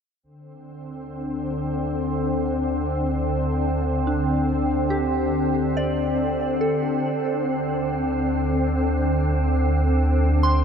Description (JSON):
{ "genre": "ambient", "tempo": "71 BPM", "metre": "4/4", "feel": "straight", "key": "unclear", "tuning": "A4 = 441 Hz", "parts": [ { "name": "round analog bass", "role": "bass", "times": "0.2-10.6 s", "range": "D2", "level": "-25 LUFS", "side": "right 1 dB", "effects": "none" }, { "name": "organ-like drone", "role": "drone", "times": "0.7-10.6 s", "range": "D3 to C4", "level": "-23 LUFS", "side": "left 1 dB", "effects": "ensemble chorus, built-in reverb" }, { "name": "soft synth bell", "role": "arpeggios", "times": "4.1-10.6 s", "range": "D4 to C6", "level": "-29 LUFS", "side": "right 1 dB", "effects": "chorus, diffuse ambient delay" } ], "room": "moderate huge ambient reverb, RT60 7.3 s", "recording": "in a vast, echoing space", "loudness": "-20 LUFS", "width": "side -7 dB against mid", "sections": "0.2-10.6 A section", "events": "fade-in on synth bell 0.2-10.6; fade-in on analog synth bass 0.2-10.6", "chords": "0.2 D5; 7.0 Amadd11/D" }